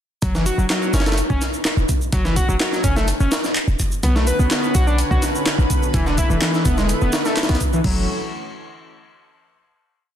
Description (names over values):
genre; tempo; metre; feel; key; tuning
breakbeat, breaks; 126 BPM; 4/4; straight; F# minor; A4 = 440 Hz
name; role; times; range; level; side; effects
overdriven synth lead; riff; 0.2-8.1 s; D3 to B4; -23 LUFS; left 1 dB; distortion, ping-pong delay
warm 808-style bass; bass; 0.2-8.1 s; E1 to B1; -19 LUFS; equal; tube saturation
breakbeat sampler-style drum kit; drums; 0.2-7.9 s; crash cymbal, hi-hat, kick drum, snare drum; -20 LUFS; equal; none
electronic shaker and handclaps; drums; 0.2-7.8 s; none; -28 LUFS; equal; none
lush unison pad; sustained chords; 4.0-8.1 s; D3 to C#5; -25 LUFS; equal; chorus, vintage 12-bit sampler grit, sidechain pumping
room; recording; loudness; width
light reverb; dense, heavily limited modern master; -16 LUFS; side -10 dB against mid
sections
0.2-7.8 drop; 7.8-9.7 final chord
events
drop 0.2-7.8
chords
0.2 N.C.; 4.0 Bmadd9; 5.9 E7sus4; 7.8 F#m7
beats
| 0.22 0.70 1.17 1.65 | 2.13 2.60 3.08 3.56 | 4.03 4.51 4.98 5.46 | 5.94 6.41 6.89 7.37 | 7.84